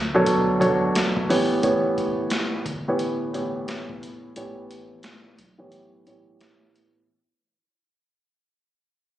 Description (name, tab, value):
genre	hip hop, boom-bap hip-hop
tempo	88 BPM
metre	4/4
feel	swing 63% on 16ths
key	unclear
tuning	A4 = 440 Hz
part	soft dub sub bass	bass	0.0-6.4 s	G1 to D2	-36 LUFS	equal	none
part	warm concert grand piano	accompaniment	0.1-7.0 s	A2 to C#5	-22 LUFS	right 1 dB	cassette tape, high-pass filter, low-pass filter
part	boom bap sampler-style drum kit	drums	0.3-7.0 s	hi-hat, kick drum, snare drum	-28 LUFS	equal	vintage 12-bit sampler grit
room	light reverb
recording	recorded on a phone in the room, club reverb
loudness	-20 LUFS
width	side -13 dB against mid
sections	0.0-7.1 A section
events	fade-out 0.0-7.1; filter sweep on grand piano 0.0-7.1; break 4.4-7.1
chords	0.0 Bm7; 1.3 A7